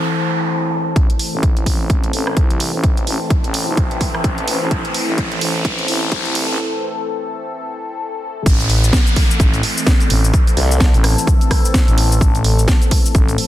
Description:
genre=bass house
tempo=128 BPM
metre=4/4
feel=swing 59% on 16ths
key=A minor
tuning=A4 = 440 Hz
part: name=sweeping resonant pad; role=sustained chords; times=0.0-13.5 s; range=E3 to A4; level=-23 LUFS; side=left 2 dB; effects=chorus, phaser, sidechain pumping
part: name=noise sweep, riser and downlifter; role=sound effects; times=0.0-12.2 s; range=none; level=-24 LUFS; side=equal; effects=none
part: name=warbly tape-like pad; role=texture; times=0.0-6.6 s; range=E4 to A5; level=-28 LUFS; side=right 2 dB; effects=chorus, built-in reverb, sidechain pumping
part: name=growling FM bass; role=bass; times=1.0-13.4 s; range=A1 to C2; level=-19 LUFS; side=equal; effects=tube saturation, sidechain pumping, high-pass filter
part: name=electronic kick drum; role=drums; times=1.0-13.3 s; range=none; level=-15 LUFS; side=equal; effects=overdrive
part: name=house drum kit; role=drums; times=1.0-13.5 s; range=hi-hat, rim click, shaker, snare drum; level=-22 LUFS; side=right 1 dB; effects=overdrive, high-pass filter on cymbals, high-pass filter on hats, high-pass filter on snare, high-pass filter on perc, high-pass filter on room
part: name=formant-sweep wobble bass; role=bass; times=10.6-10.9 s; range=C2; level=-14 LUFS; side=equal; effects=chorus, overdrive, sidechain pumping
room=little or no reverb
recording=dense, heavily limited modern master, high-pass filter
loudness=-14 LUFS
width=side -13 dB against mid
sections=1.0-8.5 A section; 8.5-13.5 B section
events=noise sweep 0.0-1.0; build-up 1.0-8.5; riser 1.1-6.6; drum fill 4.7-6.6; break 6.6-8.5; drop 8.5-13.5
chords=0.0 Am

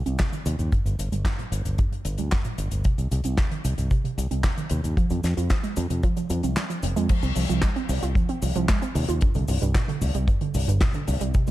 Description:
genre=italo disco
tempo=113 BPM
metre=4/4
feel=straight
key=unclear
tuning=A4 = 440 Hz
part: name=modern bright fingered electric bass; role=bass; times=0.0-11.5 s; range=F1 to F2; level=-25 LUFS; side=equal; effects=none
part: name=warbly dusty pluck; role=arpeggios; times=0.1-11.5 s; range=D2 to F4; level=-28 LUFS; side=right 3 dB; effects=chorus, ping-pong delay
part: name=damped 70s drum kit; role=drums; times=0.1-11.5 s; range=cabasa, crash cymbal, handclaps, hi-hat, snare drum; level=-32 LUFS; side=left 2 dB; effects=studio reverb
part: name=kick drum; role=drums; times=0.2-11.5 s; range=none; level=-23 LUFS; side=equal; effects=studio reverb
room=light reverb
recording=dark, warm production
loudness=-22 LUFS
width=side -15 dB against mid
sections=0.0-7.1 A section; 7.1-11.5 B section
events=filter sweep on synth arpeggio sound 0.0-7.1; kick drops out 6.6-7.1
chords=0.0 Cm; 0.7 G5; 2.8 Cm; 5.0 F5; 7.1 F5/C; 9.2 G5/C

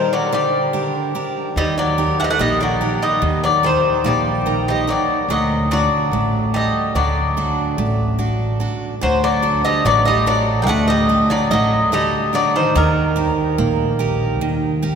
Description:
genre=greek folk, Greek bouzouki band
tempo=145 BPM (eighths)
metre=9/8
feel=straight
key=unclear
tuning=A4 = 438 Hz
part: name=Greek bouzouki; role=melody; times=0.0-15.0 s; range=Bb4 to G5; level=-19 LUFS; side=left 2 dB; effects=none
part: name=Greek bouzouki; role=second line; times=0.0-15.0 s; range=Eb3 to Bb3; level=-23 LUFS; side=equal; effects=none
part: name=picked steel-string acoustic guitar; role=accompaniment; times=0.0-15.0 s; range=D3 to G5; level=-23 LUFS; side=right 4 dB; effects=none
part: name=upright bass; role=bass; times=1.6-15.0 s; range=A1 to Eb2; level=-21 LUFS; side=equal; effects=none
room=wet cathedral reverb, RT60 5.7 s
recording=recorded in a church or concert hall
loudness=-15 LUFS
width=side -7 dB against mid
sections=0.0-9.0 A section; 9.0-15.0 B section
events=none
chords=0.0 Gm; 1.6 Eb; 5.3 D; 12.8 Eb

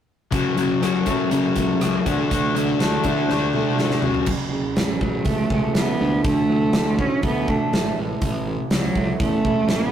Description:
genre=quiet-loud alternative rock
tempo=122 BPM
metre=4/4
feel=straight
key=F# minor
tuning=A4 = 438 Hz
part: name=electric guitar through a small old amp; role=arpeggios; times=0.3-9.9 s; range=F#2 to E4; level=-25 LUFS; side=right 3 dB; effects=none
part: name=overdriven semi-hollow guitar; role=riff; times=0.3-4.3 s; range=F#2 to D4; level=-21 LUFS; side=left 5 dB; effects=none
part: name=fuzz picked electric bass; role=bass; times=0.3-9.9 s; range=E1 to D3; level=-28 LUFS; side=equal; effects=overdrive
part: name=huge arena drum kit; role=drums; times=0.3-9.8 s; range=crash cymbal, hi-hat, kick drum, rim click, snare drum, toms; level=-24 LUFS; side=equal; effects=none
part: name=clear cello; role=melody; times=4.8-9.9 s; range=F#3 to C#4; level=-23 LUFS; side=right 2 dB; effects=none
room=light reverb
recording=rough rehearsal-room recording, tube saturation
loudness=-18 LUFS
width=side -9 dB against mid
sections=0.3-4.3 A section; 4.3-9.9 B section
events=drum fill 3.3-4.3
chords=0.3 F#m; 2.1 D; 4.0 F#5; 4.3 F#m; 6.0 D; 8.0 A

